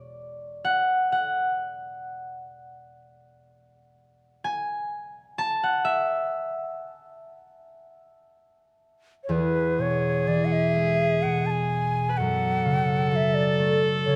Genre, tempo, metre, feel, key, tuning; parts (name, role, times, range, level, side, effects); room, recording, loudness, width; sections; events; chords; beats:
celtic folk, Celtic slow air; 63 BPM; 3/4; rubato; E mixolydian; A4 = 440 Hz
concert harp; accompaniment; 0.0-14.2 s; E2 to A5; -28 LUFS; equal
breathy mellow shakuhachi; melody; 9.2-14.2 s; B4 to A5; -28 LUFS; equal
warm viola; second line; 9.3-14.2 s; G#4 to B4; -31 LUFS; equal
light reverb; close, detailed microphones; -25 LUFS; mono
0.0-9.3 A section; 9.3-14.2 B section
harp solo 0.0-9.3
0.0 N.C.; 9.3 E; 12.2 F#m
| 0.64 1.59 2.53 | 3.48 4.42 5.38 | 6.33 7.30 8.32 | 9.31 10.29 11.25 | 12.19 13.12 14.06